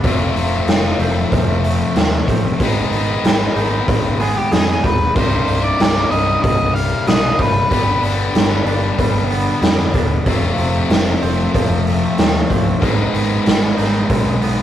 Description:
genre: quiet-loud alternative rock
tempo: 94 BPM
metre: 4/4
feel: straight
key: unclear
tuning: A4 = 440 Hz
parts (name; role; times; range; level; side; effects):
- twangy electric guitar; arpeggios; 0.0-14.6 s; C2 to Eb4; -27 LUFS; right 5 dB; none
- distorted electric guitar; riff; 0.0-14.6 s; C2 to Ab4; -19 LUFS; left 3 dB; overdrive
- modern bright picked electric bass; bass; 0.0-14.6 s; C1 to F2; -21 LUFS; equal; none
- raw garage drum kit; drums; 0.0-14.6 s; hi-hat, kick drum, snare drum; -17 LUFS; right 1 dB; none
- octave-fuzz lead guitar; melody; 4.2-8.0 s; G4 to F5; -19 LUFS; equal; distortion
room: moderate small room ambience, RT60 0.5 s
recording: rough rehearsal-room recording, warm saturation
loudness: -14 LUFS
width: side -11 dB against mid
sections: 0.0-14.6 A section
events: none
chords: 0.0 F; 2.6 Abm; 5.2 Cm; 7.7 G; 10.3 F; 12.8 Abm

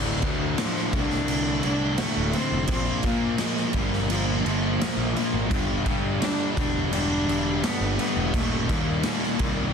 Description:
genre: quiet-loud alternative rock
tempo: 85 BPM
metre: 4/4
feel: straight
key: unclear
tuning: A4 = 440 Hz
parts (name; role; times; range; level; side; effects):
- cranked stack guitar; riff; 0.0-9.7 s; D2 to Bb3; -32 LUFS; right 12 dB; overdrive
- crunchy overdriven guitar; riff; 0.0-9.7 s; D2 to Bb3; -30 LUFS; left 12 dB; none
- thick fuzz guitar; riff; 0.0-9.7 s; D2 to Bb3; -31 LUFS; equal; distortion
- fuzz picked electric bass; bass; 0.0-9.7 s; D1 to Bb2; -29 LUFS; equal; overdrive
- raw garage drum kit; drums; 0.2-9.6 s; crash cymbal, kick drum, snare drum; -27 LUFS; right 1 dB; none
- rich cello; melody; 0.6-9.7 s; F3 to D4; -30 LUFS; equal; digital delay
room: light reverb, small room ambience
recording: dense, heavily limited modern master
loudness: -22 LUFS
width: side -6 dB against mid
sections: 0.0-9.7 A section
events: none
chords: 0.0 D5; 2.7 Bb5; 5.5 G5; 8.3 Eb

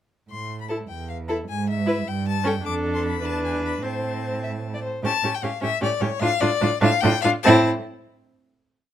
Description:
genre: quick classical-period movement for string quartet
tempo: 101 BPM (dotted quarters)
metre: 6/8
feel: straight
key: A minor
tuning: A4 = 439 Hz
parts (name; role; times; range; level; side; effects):
- rich violin; melody; 0.3-7.7 s; C#5 to D6; -26 LUFS; left 8 dB; none
- rich cello; bass; 0.3-7.7 s; E2 to A2; -26 LUFS; right 4 dB; none
- rich violin; second line; 0.7-7.7 s; E4 to E5; -25 LUFS; left 2 dB; none
- rich viola; accompaniment; 0.7-7.7 s; C4 to E4; -26 LUFS; right 2 dB; none
room: light reverb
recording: close, detailed microphones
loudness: -20 LUFS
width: side -10 dB against mid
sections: 0.3-5.0 A section; 5.0-7.5 coda; 7.5-8.7 final chord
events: none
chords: 0.3 A5; 1.5 E/G#; 2.1 A7/G; 2.6 Dm/F; 3.2 E5; 3.8 Am; 5.0 A7; 6.2 Dm/A; 7.5 Am

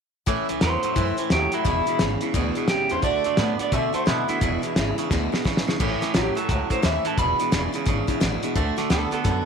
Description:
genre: rockabilly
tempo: 174 BPM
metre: 4/4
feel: swing 63% on 8ths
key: A major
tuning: A4 = 440 Hz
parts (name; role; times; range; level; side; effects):
- picked steel-string acoustic guitar; accompaniment; 0.3-9.5 s; E2 to F#4; -30 LUFS; left 15 dB; none
- twangy electric guitar; riff; 0.3-9.4 s; E2 to B3; -27 LUFS; right 15 dB; none
- upright bass; bass; 0.3-9.4 s; E1 to B2; -28 LUFS; left 1 dB; none
- cloth-damped thuddy drum kit; drums; 0.3-9.4 s; crash cymbal, hi-hat, kick drum, snare drum; -25 LUFS; left 1 dB; none
- electric guitar through a small old amp; melody; 0.6-9.5 s; E4 to B5; -25 LUFS; right 1 dB; tape echo
room: studio reverb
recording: 1960s-style stereo with parts hard left and right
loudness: -20 LUFS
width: side -6 dB against mid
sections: 0.3-5.8 A section; 5.8-9.5 B section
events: drum fill 5.1-5.8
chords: 0.3 A; 1.7 E7; 3.0 D; 4.4 E7; 5.8 A; 7.2 E7; 8.6 D

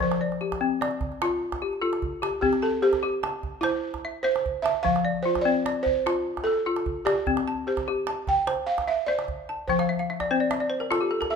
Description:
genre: west african traditional, West African string and xylophone music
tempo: 99 BPM (dotted quarters)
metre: 12/8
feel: straight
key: C major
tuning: A4 = 440 Hz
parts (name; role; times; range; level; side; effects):
- balafon; melody; 0.0-11.4 s; E4 to G5; -25 LUFS; right 3 dB; none
- balafon; arpeggios; 0.0-11.4 s; F3 to A5; -26 LUFS; left 4 dB; none
- calabash; percussion; 0.0-11.4 s; none; -33 LUFS; right 5 dB; none
room: moderate recital hall reverb, RT60 1.6 s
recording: minimal, uncompressed stereo recording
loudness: -23 LUFS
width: side -6 dB against mid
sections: 0.0-2.4 A section; 2.4-11.4 B section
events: balafon solo 2.4-11.4; balafon fill 9.7-11.4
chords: 0.0 F; 2.4 C; 4.8 F; 7.3 C; 9.7 F

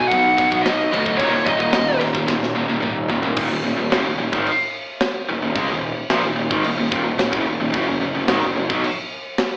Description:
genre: heavy metal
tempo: 110 BPM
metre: 4/4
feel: straight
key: Eb minor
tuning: A4 = 440 Hz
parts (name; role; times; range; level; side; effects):
- high-gain lead guitar; melody; 0.0-2.0 s; Db5 to F#5; -21 LUFS; equal; distortion, slapback echo
- distorted electric guitar; riff; 0.0-8.8 s; Eb2 to B3; -29 LUFS; equal; distortion, slapback echo
- heavy high-gain guitar; riff; 0.0-8.8 s; Eb2 to Ab3; -26 LUFS; equal; distortion, slapback echo
- scooped high-gain guitar; riff; 0.0-3.4 s; Eb2 to F#3; -28 LUFS; equal; distortion, slapback echo
- fuzz picked electric bass; bass; 0.0-8.8 s; Eb1 to D2; -26 LUFS; equal; overdrive
- tight metal drum kit; drums; 0.1-9.5 s; crash cymbal, kick drum, ride cymbal, snare drum, toms; -27 LUFS; equal; none
room: light reverb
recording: live gig heard through the venue's PA, club reverb, AM radio sound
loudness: -20 LUFS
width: mono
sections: 0.0-3.4 A section; 3.4-9.6 B section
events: drum fill 2.3-3.4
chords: 0.0 B; 1.2 Eb5; 3.4 Ebm; 7.8 Gb5

